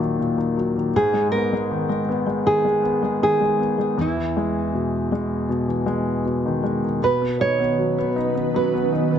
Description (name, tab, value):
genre	pop ballad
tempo	79 BPM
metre	4/4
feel	straight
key	G# minor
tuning	A4 = 440 Hz
part	nylon-string guitar	melody	0.0-9.2 s	D#4 to C#5	-22 LUFS	right 3 dB	ping-pong delay
part	warm concert grand piano	accompaniment	0.0-9.2 s	D#2 to D#4	-22 LUFS	left 2 dB	none
part	ethereal airy pad	sustained chords	7.6-9.2 s	D#3 to B4	-24 LUFS	right 3 dB	ensemble chorus, built-in reverb
room	moderate recital hall reverb, RT60 1.6 s, small room ambience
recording	nothing above 7.9 kHz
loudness	-19 LUFS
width	side -8 dB against mid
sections	0.0-9.2 A section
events	none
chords	0.0 D#m; 0.9 G#m; 4.0 Emaj7; 7.0 Badd9